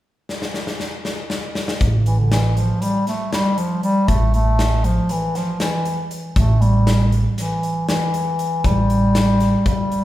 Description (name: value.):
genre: progressive instrumental, band music in an uneven meter.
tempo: 237 BPM (eighths).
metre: 9/8.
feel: straight.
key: unclear.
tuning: A4 = 440 Hz.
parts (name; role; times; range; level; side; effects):
big rock drum kit; drums; 0.3-10.0 s; hi-hat, kick drum, snare drum; -24 LUFS; left 1 dB; none.
upright bass; bass; 1.8-9.5 s; A1; -18 LUFS; right 1 dB; none.
warm bass clarinet; melody; 2.1-10.0 s; D3 to A3; -19 LUFS; left 1 dB; none.
room: wet recital hall reverb, RT60 1.6 s.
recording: recorded in a church or concert hall.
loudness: -16 LUFS.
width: side -14 dB against mid.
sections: 0.0-1.8 A section; 1.8-10.0 B section.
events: drum fill 0.3-1.8.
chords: 0.0 N.C.; 1.8 A5.